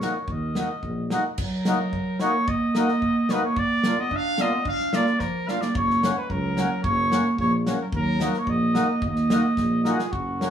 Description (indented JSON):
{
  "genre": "alpine folk, alpine dance band",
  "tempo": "110 BPM",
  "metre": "2/4",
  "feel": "straight",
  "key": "Eb minor",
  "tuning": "A4 = 440 Hz",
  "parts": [
    { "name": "mellow trumpet", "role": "melody", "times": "0.0-10.5 s", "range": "F#4 to F5", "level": "-26 LUFS", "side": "left 1 dB", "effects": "none" },
    { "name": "dark clarinet", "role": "second line", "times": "0.0-10.5 s", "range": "F3 to Bb4", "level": "-26 LUFS", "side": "right 3 dB", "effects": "none" },
    { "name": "mellow accordion", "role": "accompaniment", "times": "0.0-10.5 s", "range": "Bb3 to Gb4", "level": "-28 LUFS", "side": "left 2 dB", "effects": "none" },
    { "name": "mellow tuba", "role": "bass", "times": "0.0-1.2, 5.8-10.5 s", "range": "Gb1 to Eb2", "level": "-29 LUFS", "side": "equal", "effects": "none" },
    { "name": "natural country drum kit", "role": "drums", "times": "0.0-10.5 s", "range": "crash cymbal, hi-hat, kick drum, snare drum", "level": "-29 LUFS", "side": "equal", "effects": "none" }
  ],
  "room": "wet studio reverb, RT60 0.7 s",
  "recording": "band playing live in one room, small room ambience",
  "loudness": "-21 LUFS",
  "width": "side -9 dB against mid",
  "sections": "0.0-1.4 A section; 1.4-10.1 A section",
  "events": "drum fill 5.2-5.7, 9.6-10.1",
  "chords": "0.0 Ebm; 3.6 Bb; 5.7 Gb; 7.9 Ebm"
}